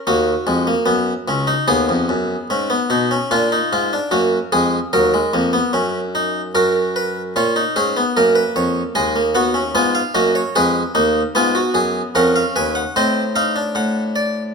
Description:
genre	classical, baroque-style 4-part fugue for harpsichord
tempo	74 BPM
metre	4/4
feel	straight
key	Eb minor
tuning	A4 = 437 Hz
part	harpsichord	solo	0.0-14.5 s	Db2 to Ab5	-15 LUFS	equal	none
room	moderate large studio reverb, RT60 1.4 s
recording	none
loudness	-15 LUFS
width	side -5 dB against mid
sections	0.0-6.5 A section; 6.5-14.5 B section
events	none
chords	0.1 Ebm; 1.7 Abm/Eb; 3.3 Bb7; 4.9 Ebm; 6.5 Gb; 8.2 Ebm; 13.0 Adim7

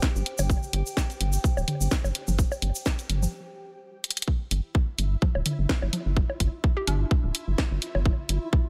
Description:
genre	minimal techno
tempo	127 BPM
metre	4/4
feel	swing 55% on 16ths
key	unclear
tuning	A4 = 440 Hz
part	electronic kick drum	drums	0.0-8.6 s	none	-26 LUFS	equal	studio reverb
part	garage drum kit	drums	0.0-8.4 s	hi-hat, snare drum	-32 LUFS	equal	studio reverb
part	egg shaker	percussion	0.0-3.3 s	none	-39 LUFS	equal	none
part	flickering grainy texture	texture	0.0-8.7 s	E4 to G4	-46 LUFS	equal	built-in reverb, sidechain pumping
part	warbly tape-like pad	texture	0.0-8.7 s	F4 to G5	-44 LUFS	equal	chorus, built-in reverb, sidechain pumping
part	rubbery square bass	bass	0.2-8.4 s	D1 to G1	-28 LUFS	equal	sidechain pumping
part	electronic toms, bongos and congas	percussion	0.4-8.0 s	none	-34 LUFS	equal	studio reverb, tape echo
part	hollow square pluck	melody	6.8-7.3 s	D4 to G4	-36 LUFS	equal	chorus, tape echo
room	little or no reverb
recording	none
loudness	-26 LUFS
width	mono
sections	0.0-4.3 A section; 4.3-8.7 B section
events	stop 3.3-4.3; drum fill 4.0; drop 4.3-8.7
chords	0.0 G5

